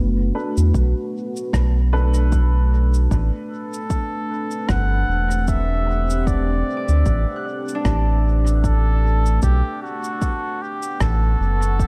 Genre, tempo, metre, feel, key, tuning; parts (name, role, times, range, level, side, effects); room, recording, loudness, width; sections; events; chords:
ambient dub; 76 BPM; 4/4; swing 56% on 16ths; A dorian; A4 = 440 Hz
deep dark ambient pad; sustained chords; 0.0-11.9 s; A3 to F#5; -30 LUFS; equal; chorus, built-in reverb
round analog bass; bass; 0.0-11.9 s; E1 to E2; -20 LUFS; equal
warm upright piano; stabs; 0.3-3.1 s; D4 to B4; -34 LUFS; equal; dub echo
cabasa and rim click; drums; 0.6-11.9 s; -35 LUFS; equal; dub echo
electronic kick drum; drums; 0.7-11.9 s; -25 LUFS; equal; overdrive
trumpet with cup mute; melody; 3.5-11.9 s; F#4 to F#5; -29 LUFS; equal; dub echo
Celtic harp; arpeggios; 6.8-10.5 s; D4 to F#6; -34 LUFS; equal; dub echo
light reverb, small room ambience; -20 LUFS; mono
0.0-11.9 A section
0.0 Bm7; 3.1 Am11; 9.4 Bm7